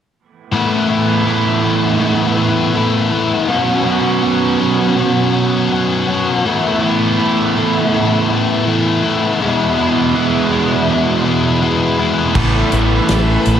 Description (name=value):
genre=rock, shoegaze and dream pop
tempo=81 BPM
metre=4/4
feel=straight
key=A major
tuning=A4 = 441 Hz
part: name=biting overdriven guitar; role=riff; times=0.5-13.6 s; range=E2 to F#4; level=-14 LUFS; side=left 4 dB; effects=wide subtle chorus
part: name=crunchy overdriven guitar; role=riff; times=0.5-13.6 s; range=E2 to A4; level=-17 LUFS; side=right 7 dB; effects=reverse reverb
part: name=phased string machine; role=sustained chords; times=12.4-13.6 s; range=A4 to B5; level=-24 LUFS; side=equal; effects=ensemble chorus, phaser
part: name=deep dub picked electric bass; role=bass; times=12.4-13.6 s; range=A1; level=-16 LUFS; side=equal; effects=none
part: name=loose indie drum kit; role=drums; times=12.4-13.6 s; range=crash cymbal, hi-hat, kick drum, snare drum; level=-19 LUFS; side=equal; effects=none
room=wet plate reverb, RT60 2.1 s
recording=dreamy mix soaked in reverb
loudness=-12 LUFS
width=side -9 dB against mid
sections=0.5-12.4 A section; 12.4-13.6 B section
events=none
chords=0.5 Asus2; 3.5 Bsus2; 6.5 Asus2; 9.4 E; 12.4 Asus2